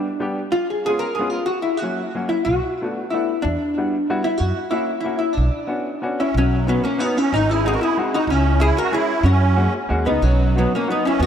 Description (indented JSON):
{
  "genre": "musette waltz",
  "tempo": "186 BPM",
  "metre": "3/4",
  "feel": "rubato",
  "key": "B minor, B major from 6.4 s",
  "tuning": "A4 = 440 Hz",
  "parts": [
    { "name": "vintage hollow-body jazz guitar", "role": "melody", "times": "0.0-11.3 s", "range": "F#3 to A#4", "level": "-21 LUFS", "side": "left 1 dB", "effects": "analog chorus, tape echo" },
    { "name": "clear upright piano", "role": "accompaniment", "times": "0.0-11.0 s", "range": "F#3 to G#4", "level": "-26 LUFS", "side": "left 2 dB", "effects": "none" },
    { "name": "upright bass", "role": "bass", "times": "2.5-11.3 s", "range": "G#1 to F#2", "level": "-19 LUFS", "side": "right 1 dB", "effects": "none" },
    { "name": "musette accordion", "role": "second line", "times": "6.2-11.2 s", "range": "F#3 to F#4", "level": "-24 LUFS", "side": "right 5 dB", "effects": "none" }
  ],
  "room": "moderate lush hall reverb, RT60 2.4 s",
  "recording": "dreamy mix soaked in reverb",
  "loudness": "-18 LUFS",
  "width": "side -8 dB against mid",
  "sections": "0.0-6.4 A section; 6.4-11.3 B section",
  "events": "none",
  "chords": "0.0 G; 0.5 C#7; 1.5 F#; 2.5 Bm7; 3.5 Emadd9; 4.4 F#7; 5.4 Bmadd9; 6.4 Badd9; 7.3 G#7; 8.3 C#m; 9.2 F#add9; 10.2 B"
}